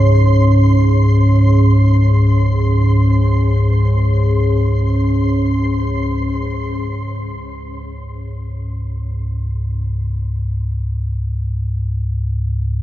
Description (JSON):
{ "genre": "dark ambient drone", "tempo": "free time", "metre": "none", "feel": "none", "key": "unclear", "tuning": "A4 = 437 Hz", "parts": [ { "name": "deep dark ambient pad", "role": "sustained chords", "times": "0.0-6.3 s", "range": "C#4 to C#5", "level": "-20 LUFS", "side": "equal", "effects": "chorus, built-in reverb" }, { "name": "deep rumbling drone", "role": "drone", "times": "0.0-12.8 s", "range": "C#2 to G#2", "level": "-15 LUFS", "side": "equal", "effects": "built-in reverb, lush chorus" }, { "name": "flickering grainy texture", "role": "texture", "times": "0.0-6.4 s", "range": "B#5", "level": "-27 LUFS", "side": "right 1 dB", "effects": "built-in reverb" } ], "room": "wet huge ambient reverb, RT60 7.3 s", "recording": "dark, warm production", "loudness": "-14 LUFS", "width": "side -13 dB against mid", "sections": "0.0-6.3 A section; 6.3-12.8 B section", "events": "none", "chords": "0.0 C#5", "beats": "free time" }